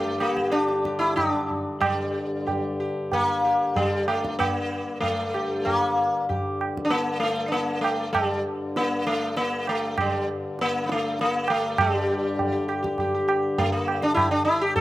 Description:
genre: indian classical, Hindustani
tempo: 92-103 BPM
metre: 4/4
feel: straight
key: G raga shivaranjani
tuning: A4 = 440 Hz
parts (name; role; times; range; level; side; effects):
- sitar; melody; 0.0-14.8 s; G3 to A4; -24 LUFS; left 1 dB; slapback echo
- hand-pumped harmonium; drone; 0.0-14.8 s; G2 to D3; -32 LUFS; left 2 dB; none
- tabla; percussion; 0.2-14.8 s; none; -28 LUFS; right 3 dB; none
room: light reverb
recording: recorded outdoors, with no room sound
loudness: -22 LUFS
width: side -15 dB against mid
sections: 0.0-1.8 A section; 1.8-11.8 B section; 11.8-14.8 C section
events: speeding up 0.0-14.8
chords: none

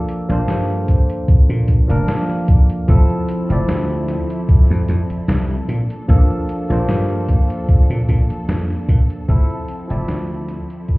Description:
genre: vaporwave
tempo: 75 BPM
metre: 4/4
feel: swing 54% on 16ths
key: unclear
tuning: A4 = 438 Hz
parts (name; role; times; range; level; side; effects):
- barky tine electric piano; accompaniment; 0.0-11.0 s; F3 to D5; -22 LUFS; equal; overdrive, lush chorus, analog delay
- gated 80s digital drum machine; drums; 0.1-11.0 s; hi-hat, snare drum; -27 LUFS; equal; gated reverb, gated reverb snare
- dry thumbed slap bass; bass; 0.3-10.9 s; F1 to Bb2; -19 LUFS; equal; none
- electronic kick drum; drums; 0.9-11.0 s; none; -12 LUFS; equal; none
- dark studio string section; sustained chords; 2.9-11.0 s; F3 to A4; -29 LUFS; equal; none
room: light reverb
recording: heard muffled through a wall, club reverb, EQ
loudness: -14 LUFS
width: side -22 dB against mid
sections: 0.0-11.0 A section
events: fade-out 7.2-11.0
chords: 0.0 Bbmaj7; 2.9 Fmaj7; 5.7 Bbmaj7; 9.3 Fmaj7

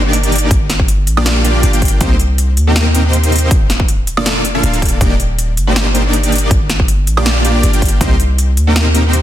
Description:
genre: future bass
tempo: 160 BPM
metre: 4/4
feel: swing 54% on 16ths, half-time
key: G minor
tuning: A4 = 440 Hz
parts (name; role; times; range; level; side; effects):
- dense compressed supersaw; riff; 0.0-9.2 s; Bb3 to G5; -16 LUFS; equal; cassette tape, sidechain pumping, ping-pong delay
- warm 808-style bass; bass; 0.0-9.2 s; D1 to Eb2; -14 LUFS; equal; sidechain pumping
- big-room dance drum kit; drums; 0.1-9.2 s; hi-hat, snare drum, woodblock; -18 LUFS; equal; none
- electronic kick drum; drums; 0.5-8.1 s; none; -13 LUFS; equal; none
room: light reverb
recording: dense, heavily limited modern master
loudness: -10 LUFS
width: side -12 dB against mid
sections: 0.0-9.2 A section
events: none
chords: 0.0 Ebmaj7; 0.5 Gm7; 2.0 Cm7; 3.5 Bbmaj7/D; 5.0 Ebmaj7; 6.5 Gm7; 8.0 Cm7

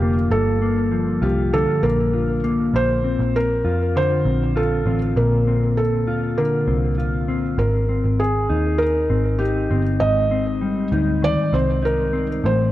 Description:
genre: dream pop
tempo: 99 BPM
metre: 4/4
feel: straight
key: unclear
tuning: A4 = 441 Hz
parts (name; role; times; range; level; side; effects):
- felt-muted upright piano; melody; 0.0-12.7 s; G4 to Eb5; -22 LUFS; right 1 dB; tape echo
- mellow electric guitar; arpeggios; 0.0-12.7 s; G2 to F4; -21 LUFS; left 2 dB; lush chorus, tape echo
- vintage muted picked electric bass; bass; 0.0-12.7 s; F1 to F2; -22 LUFS; right 1 dB; none
room: moderate scoring stage reverb, RT60 2.2 s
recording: dry, gritty hardware recording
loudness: -17 LUFS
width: side -14 dB against mid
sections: 0.0-12.7 A section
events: none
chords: 0.0 Gm7; 2.7 Bbmaj9; 7.6 Abmaj7

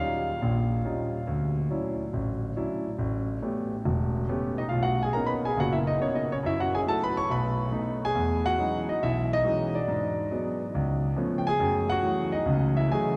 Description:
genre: solo jazz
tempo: 140 BPM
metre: 4/4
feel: swing 68% on 8ths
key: E major from 8.2 s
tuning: A4 = 440 Hz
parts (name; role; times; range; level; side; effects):
- warm concert grand piano; solo; 0.0-13.2 s; E1 to C#6; -27 LUFS; equal; none
room: wet cathedral reverb, RT60 5.2 s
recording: in a vast, echoing space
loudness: -28 LUFS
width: mono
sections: 0.0-8.2 A section; 8.2-13.2 B section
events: none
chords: 0.0 D#9; 1.3 Dmaj9; 3.0 A9; 4.7 Bmaj9; 6.4 F#m7; 7.3 B7; 8.2 Emaj13; 9.9 G#m7b5; 10.7 C#7b13; 11.6 F#m7

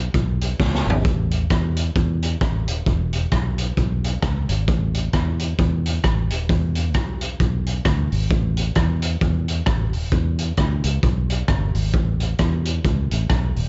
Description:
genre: ska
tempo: 132 BPM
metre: 4/4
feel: swing 59% on 8ths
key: A major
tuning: A4 = 438 Hz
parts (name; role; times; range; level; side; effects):
- fingered electric bass; bass; 0.0-13.7 s; D#1 to E2; -24 LUFS; equal; none
- raw garage drum kit; drums; 0.1-13.7 s; hi-hat, kick drum, rim click, snare drum, toms; -24 LUFS; equal; none
room: little or no reverb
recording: nothing above 7.7 kHz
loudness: -21 LUFS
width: mono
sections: 0.0-1.1 A section; 1.1-13.7 A section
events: drum fill 0.6-1.1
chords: none

